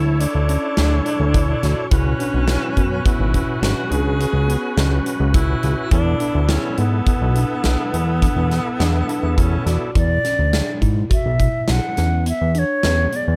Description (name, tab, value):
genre	progressive instrumental, band music in an uneven meter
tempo	104 BPM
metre	7/4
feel	straight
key	E mixolydian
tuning	A4 = 439 Hz
part	clear alto saxophone	second line	0.0-10.0 s	B3 to G#4+22c	-28 LUFS	equal	tape echo
part	bright tonewheel organ	accompaniment	0.0-9.9 s	B3 to C#5	-29 LUFS	equal	chorus vibrato
part	tine electric piano	arpeggios	0.0-13.4 s	B3 to F#4	-29 LUFS	equal	none
part	fat analog bass	bass	0.0-13.4 s	G#1 to G#2	-21 LUFS	equal	none
part	big rock drum kit	drums	0.2-13.3 s	hi-hat, kick drum, snare drum	-24 LUFS	equal	none
part	concert flute	melody	10.0-13.4 s	C#5 to F#5	-24 LUFS	equal	none
room	little or no reverb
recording	none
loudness	-19 LUFS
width	mono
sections	0.0-10.0 A section; 10.0-13.4 B section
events	none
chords	0.0 Dmaj7; 1.9 C#m7; 5.9 E7sus4; 10.0 E5